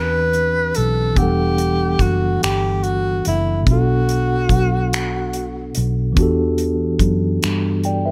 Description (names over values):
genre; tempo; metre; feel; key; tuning
slow six-eight R&B; 48 BPM (dotted quarters); 6/8; straight; E minor; A4 = 439 Hz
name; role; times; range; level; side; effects
breathy tenor saxophone; melody; 0.0-5.7 s; E4 to B4; -23 LUFS; equal; slapback echo
mellow tine electric piano; accompaniment; 0.0-8.1 s; B2 to G5; -24 LUFS; equal; none
vintage muted fingered electric bass; bass; 0.0-8.1 s; E1 to G2; -23 LUFS; equal; none
damped 70s drum kit; drums; 0.3-8.0 s; finger snaps, hi-hat, kick drum; -23 LUFS; equal; none
room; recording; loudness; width
studio ambience; none; -18 LUFS; mono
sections
0.0-8.1 A section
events
none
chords
0.0 Cmaj7/E; 1.2 Em11; 3.7 Bm7; 6.2 Em11